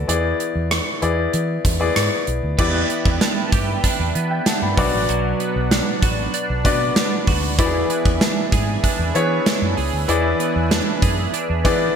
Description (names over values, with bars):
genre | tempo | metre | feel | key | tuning
1980s-style pop | 96 BPM | 4/4 | straight | unclear | A4 = 440 Hz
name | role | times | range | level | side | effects
clear baby grand piano | accompaniment | 0.0-12.0 s | B2 to B5 | -22 LUFS | left 4 dB | none
vintage muted fingered electric bass | bass | 0.0-11.9 s | A1 to E3 | -23 LUFS | right 1 dB | none
gated 80s drum kit | drums | 0.1-11.8 s | crash cymbal, hi-hat, kick drum, rim click, snare drum | -20 LUFS | right 1 dB | gated reverb
phased analog pad | sustained chords | 2.6-12.0 s | B4 to G#5 | -28 LUFS | equal | phaser, chorus
twelve-string electric guitar | riff | 2.6-12.0 s | E3 to G#4 | -26 LUFS | right 6 dB | analog chorus, ping-pong delay
room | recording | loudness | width
moderate plate reverb, RT60 1.5 s | bright 1980s-style digital production | -17 LUFS | side -7 dB against mid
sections
0.0-2.6 A section; 2.6-12.0 B section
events
none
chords
0.1 E7; 2.6 Em7; 4.8 Bm; 7.6 E7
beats
| 0.09 0.71 1.34 1.96 | 2.59 3.21 3.84 4.46 | 5.09 5.71 6.34 6.96 | 7.59 8.21 8.84 9.46 | 10.09 10.71 11.34